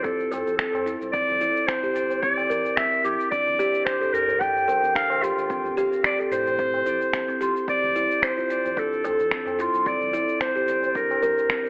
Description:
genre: organic downtempo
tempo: 110 BPM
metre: 4/4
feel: swing 54% on 16ths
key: D minor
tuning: A4 = 440 Hz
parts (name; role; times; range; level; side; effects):
- warm clarinet; melody; 0.0-11.7 s; F4 to G5; -25 LUFS; equal; vintage 12-bit sampler grit, tape echo
- kalimba; arpeggios; 0.0-11.7 s; C4 to Bb4; -30 LUFS; equal; analog delay
- warm sub bass; bass; 0.0-11.2 s; D1 to A2; -47 LUFS; equal; none
- electronic kick drum; drums; 0.0-11.6 s; none; -42 LUFS; equal; overdrive, studio reverb
- electronic shaker and finger snaps; drums; 0.0-11.7 s; none; -30 LUFS; equal; overdrive, studio reverb, tape echo
- tabla; percussion; 0.3-11.3 s; none; -40 LUFS; equal; tape echo
room: wet spring reverb, RT60 1.9 s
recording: echo-heavy mix, telephone sound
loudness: -24 LUFS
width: mono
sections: 0.0-11.7 A section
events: none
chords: 0.0 Dm9; 1.1 C9; 3.3 Gm9; 5.5 Am7; 7.7 Dm9; 9.9 C7sus2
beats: 0.04 0.59 | 1.14 1.68 2.23 2.77 | 3.32 3.86 4.41 4.96 | 5.50 6.04 6.59 7.14 | 7.68 8.23 8.77 9.32 | 9.86 10.41 10.96 11.50

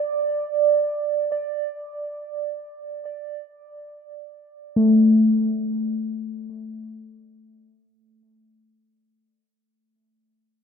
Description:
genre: ambient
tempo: free time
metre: none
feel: none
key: unclear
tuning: A4 = 441 Hz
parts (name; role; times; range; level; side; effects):
- muted felt-like synth keys; solo; 0.0-9.0 s; A3 to D5; -21 LUFS; right 1 dB; chorus, tape echo
room: wet cathedral reverb, RT60 6.2 s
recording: none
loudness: -20 LUFS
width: side -6 dB against mid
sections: 0.0-8.8 A section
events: fade-out 0.0-8.8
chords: none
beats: free time

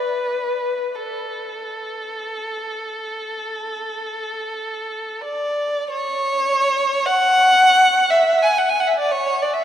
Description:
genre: classical, free, expressive piece for unaccompanied violin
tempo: 39-60 BPM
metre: 4/4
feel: rubato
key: A major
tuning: A4 = 441 Hz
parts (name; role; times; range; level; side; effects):
- rich violin; solo; 0.0-9.6 s; A4 to G#5; -18 LUFS; equal; none
room: wet cathedral reverb, RT60 4.3 s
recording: none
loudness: -17 LUFS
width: side -10 dB against mid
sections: 0.0-5.9 A section; 5.9-9.6 B section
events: none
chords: none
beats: | 0.96 2.20 3.39 4.58 | 5.90 7.07 8.11 9.12

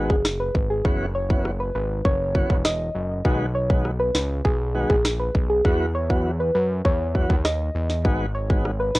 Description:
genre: dancehall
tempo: 100 BPM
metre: 4/4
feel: straight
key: unclear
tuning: A4 = 440 Hz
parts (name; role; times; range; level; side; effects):
- tonewheel organ; accompaniment; 0.0-8.7 s; D#3 to F#4; -26 LUFS; equal; slow rotary speaker, cassette tape
- fat analog bass; bass; 0.0-9.0 s; E1 to F#2; -26 LUFS; equal; none
- soft round pluck; melody; 0.1-9.0 s; G#4 to D#5; -25 LUFS; equal; chorus, cassette tape, analog delay
- island pop drum kit; drums; 0.1-9.0 s; kick drum, rim click, snare drum; -21 LUFS; equal; overdrive, cassette tape
room: light reverb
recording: home recording on cassette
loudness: -20 LUFS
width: side -20 dB against mid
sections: 0.0-9.0 A section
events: none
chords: 0.0 G#m7; 0.8 F#7sus4; 3.2 B6; 5.6 Esus2; 8.0 G#m7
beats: 0.25 | 0.85 1.45 2.05 2.65 | 3.25 3.85 4.45 5.05 | 5.65 6.25 6.85 7.45 | 8.05 8.65

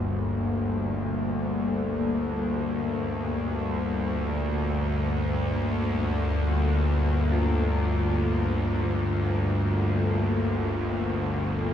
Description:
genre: dark ambient drone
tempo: free time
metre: none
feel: none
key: G minor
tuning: A4 = 440 Hz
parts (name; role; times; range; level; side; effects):
- deep dark ambient pad; sustained chords; 0.0-11.7 s; G3 to A5; -30 LUFS; left 2 dB; chorus, built-in reverb
- bowed-like drone; drone; 0.0-11.7 s; G1 to D2; -25 LUFS; equal; built-in reverb
- bronze singing bowl; texture; 0.0-11.7 s; F4; -37 LUFS; equal; none
room: wet huge ambient reverb, RT60 7.9 s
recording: small room ambience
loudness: -24 LUFS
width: side -9 dB against mid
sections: 0.0-11.7 A section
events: fade-in on singing bowl 0.0-11.7; fade-out on ambient pad 0.0-11.7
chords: 0.0 Gm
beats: free time

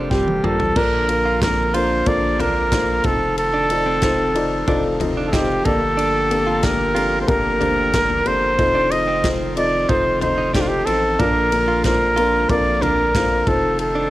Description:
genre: piano-driven pop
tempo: 92 BPM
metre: 4/4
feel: straight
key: Bb major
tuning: A4 = 440 Hz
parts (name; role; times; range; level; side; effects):
- breathy trumpet; melody; 0.0-14.1 s; F4 to Eb5; -19 LUFS; right 1 dB; none
- dark upright piano; accompaniment; 0.0-14.1 s; G2 to Eb5; -22 LUFS; left 2 dB; cassette tape
- pipe organ, full organ; sustained chords; 0.0-14.1 s; C3 to G4; -31 LUFS; right 2 dB; cassette tape
- direct-recorded clean electric guitar; riff; 0.0-14.1 s; Bb3 to F4; -27 LUFS; right 4 dB; cassette tape
- round analog bass; bass; 0.0-14.1 s; F1 to Bb1; -27 LUFS; equal; none
- natural country drum kit; drums; 0.1-13.9 s; crash cymbal, handclaps, kick drum, ride cymbal, snare drum, toms; -25 LUFS; equal; cassette tape
room: light reverb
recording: home recording on cassette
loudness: -16 LUFS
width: side -16 dB against mid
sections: 0.8-14.1 A section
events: drum fill 0.1-0.8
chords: 0.0 Fsus2; 0.8 Bbmaj7; 3.0 F7; 5.7 Gmadd9; 8.6 F7; 11.2 Bbmaj7; 13.5 F7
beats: 0.11 | 0.77 1.42 2.07 2.72 | 3.37 4.03 4.68 5.33 | 5.98 6.63 7.28 7.93 | 8.59 9.24 9.89 10.54 | 11.19 11.84 12.49 13.14 | 13.80

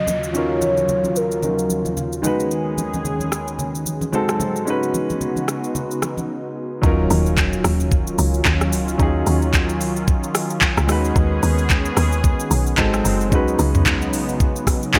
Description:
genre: amapiano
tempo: 111 BPM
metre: 4/4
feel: swing 58% on 16ths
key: Eb minor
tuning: A4 = 439 Hz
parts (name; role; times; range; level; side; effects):
- warm velvety synth lead; melody; 0.0-2.2 s; Bb4 to Eb5; -25 LUFS; equal; chorus, tape echo
- warm baby grand piano; accompaniment; 0.0-15.0 s; D#3 to B4; -26 LUFS; equal; none
- warm analog pad; sustained chords; 0.0-15.0 s; Eb2 to A4; -27 LUFS; equal; chorus, sidechain pumping
- downlifter and impact; sound effects; 0.0-2.5, 6.8-9.0 s; none; -36 LUFS; equal; none
- afro-pop drum kit; drums; 0.1-15.0 s; handclaps, hi-hat, kick drum, rim click, shaker, toms; -22 LUFS; equal; none
- congas; percussion; 0.1-6.3 s; none; -32 LUFS; equal; none
- woody log drum bass; bass; 6.8-14.4 s; Gb1 to Eb2; -23 LUFS; equal; none
room: light reverb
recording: none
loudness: -20 LUFS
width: mono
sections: 0.0-6.8 A section; 6.8-15.0 B section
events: break 6.3-6.8; drop 6.8-15.0; impact 6.8-9.0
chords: 0.0 Ebm9; 2.2 B6/D#; 4.1 Ab7b9; 4.7 Db9sus4; 6.8 Ebm9; 10.9 B6/D#; 12.8 Ab7b9; 13.3 Db9sus4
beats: | 0.35 0.89 1.43 1.97 | 2.51 3.05 3.59 4.13 | 4.67 5.21 5.75 6.29 | 6.83 7.38 7.92 8.46 | 9.00 9.54 10.08 10.62 | 11.16 11.70 12.24 12.78 | 13.32 13.86 14.40 14.94

